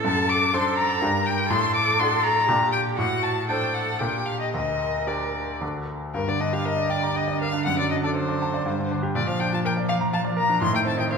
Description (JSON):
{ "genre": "quick classical-period movement for piano trio", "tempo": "111-125 BPM", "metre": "3/4", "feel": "rubato", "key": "G minor", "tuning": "A4 = 442 Hz", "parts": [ { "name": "rich violin", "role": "melody", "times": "0.0-11.2 s", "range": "Bb4 to D6", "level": "-24 LUFS", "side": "left 4 dB", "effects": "none" }, { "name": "dark cello", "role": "second line", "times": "0.0-11.2 s", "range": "D3 to Bb4", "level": "-28 LUFS", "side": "right 5 dB", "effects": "none" }, { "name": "bright grand piano", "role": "accompaniment", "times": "0.0-11.2 s", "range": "D2 to Bb5", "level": "-26 LUFS", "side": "equal", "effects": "none" } ], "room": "wet scoring stage reverb, RT60 1.9 s", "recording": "minimal, uncompressed stereo recording", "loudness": "-21 LUFS", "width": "side -5 dB against mid", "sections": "0.0-6.1 A section; 6.1-11.2 B section", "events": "none", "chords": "0.0 D7/F#; 1.0 Gm; 1.5 D/A; 2.5 Gm/Bb; 3.0 D7/A; 4.0 Gm/Bb; 4.5 Gm/D; 5.6 D; 6.1 Gm; 7.7 D7/F#; 8.7 G5; 9.2 Bb; 10.6 F7/A (rootless)" }